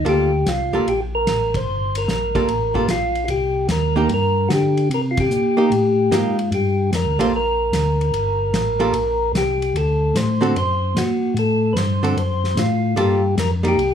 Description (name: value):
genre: soul jazz organ trio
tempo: 149 BPM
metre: 4/4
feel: swing 67% on 8ths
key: G minor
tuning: A4 = 440 Hz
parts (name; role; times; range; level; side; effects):
- percussive tonewheel organ; melody; 0.0-13.9 s; F4 to C5; -20 LUFS; left 1 dB; slow rotary speaker
- archtop guitar, miked and amplified; accompaniment; 0.0-13.8 s; D3 to A4; -20 LUFS; right 2 dB; none
- mellow tonewheel organ; bass; 0.0-13.9 s; G1 to D3; -21 LUFS; equal; chorus vibrato, slow rotary speaker
- warm soul drum kit; drums; 0.1-13.9 s; hi-hat, kick drum, ride cymbal, snare drum; -27 LUFS; left 1 dB; none
room: light reverb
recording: small room reverb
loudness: -17 LUFS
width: side -8 dB against mid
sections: 0.0-13.9 A section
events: band accent 1.5, 5.1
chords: 0.1 Gm9; 3.3 Cm7; 6.5 Gm9; 9.7 D7; 13.0 Gm9